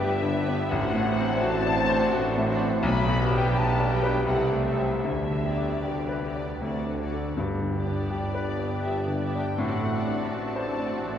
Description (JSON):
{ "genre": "classical, romantic movement for piano and orchestra", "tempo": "76-87 BPM", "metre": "3/4", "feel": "rubato", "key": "G major", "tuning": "A4 = 440 Hz", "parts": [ { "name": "clear concert grand piano", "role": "melody", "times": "0.0-11.2 s", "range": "A1 to D5", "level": "-27 LUFS", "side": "left 1 dB", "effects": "none" }, { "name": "muted studio violin section", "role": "melody", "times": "0.0-11.2 s", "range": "D5 to B5", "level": "-32 LUFS", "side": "left 4 dB", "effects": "none" }, { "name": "muted studio violin section", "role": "second line", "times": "0.0-11.2 s", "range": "E4 to D5", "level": "-36 LUFS", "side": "equal", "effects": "none" }, { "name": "muted studio viola section", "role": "accompaniment", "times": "0.0-11.2 s", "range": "G3 to D4", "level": "-36 LUFS", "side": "right 1 dB", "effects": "none" }, { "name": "warm French horn section", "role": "sustained chords", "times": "0.0-11.2 s", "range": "G3 to G4", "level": "-33 LUFS", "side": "left 1 dB", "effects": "none" }, { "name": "clear tuba", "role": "bass", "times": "0.0-11.2 s", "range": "G1 to D2", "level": "-35 LUFS", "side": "right 2 dB", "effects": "none" }, { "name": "muted studio cello section", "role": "bass", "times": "0.0-11.2 s", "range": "G2 to D3", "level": "-35 LUFS", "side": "right 3 dB", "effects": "none" }, { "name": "muted studio double bass section", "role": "bass", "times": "0.0-11.2 s", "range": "G1 to D2", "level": "-35 LUFS", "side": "right 2 dB", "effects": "none" }, { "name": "timpani", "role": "percussion", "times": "5.0-8.4 s", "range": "none", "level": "barely audible", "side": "none", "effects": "none" } ], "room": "wet cathedral reverb, RT60 5.1 s", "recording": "recorded in a church or concert hall", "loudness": "-23 LUFS", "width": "side -9 dB against mid", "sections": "0.0-11.2 A section", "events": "none", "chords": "0.0 G; 0.7 D7/A; 2.8 G/B; 4.3 Am7/C; 5.0 G/D; 6.6 D; 7.4 G; 9.6 D7/A" }